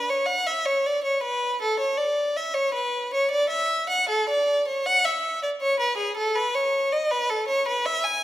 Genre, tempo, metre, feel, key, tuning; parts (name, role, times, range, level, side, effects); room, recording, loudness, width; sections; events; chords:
classical, baroque-style suite movement for unaccompanied violin; 79 BPM; 3/4; rubato; A4 = 436 Hz
clear violin; solo; 0.0-8.2 s; G#4 to G#5; -22 LUFS; equal
wet recital hall reverb, RT60 1.6 s; -22 LUFS; side -13 dB against mid
0.0-8.2 A section